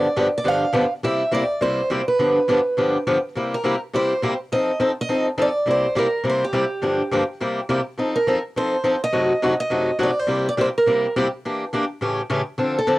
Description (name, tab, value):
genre	jazz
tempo	208 BPM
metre	4/4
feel	swing 59% on 8ths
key	C mixolydian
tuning	A4 = 440 Hz
part	picked acoustic archtop guitar	melody	0.0-13.0 s	G4 to F5	-21 LUFS	right 2 dB	cassette tape
part	picked swing-style acoustic guitar	accompaniment	0.0-13.0 s	F#2 to A4	-21 LUFS	left 1 dB	cassette tape
room	light reverb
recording	home recording on cassette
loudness	-19 LUFS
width	side -18 dB against mid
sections	0.0-3.3 A section; 3.3-13.0 A section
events	none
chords	0.0 G7; 1.0 C7; 2.2 G7; 3.3 C7; 4.5 F7; 5.7 C7; 6.8 Gm7; 7.4 C7; 8.0 F7; 9.1 F#dim7; 10.3 C7; 11.4 Em7b5; 12.0 A7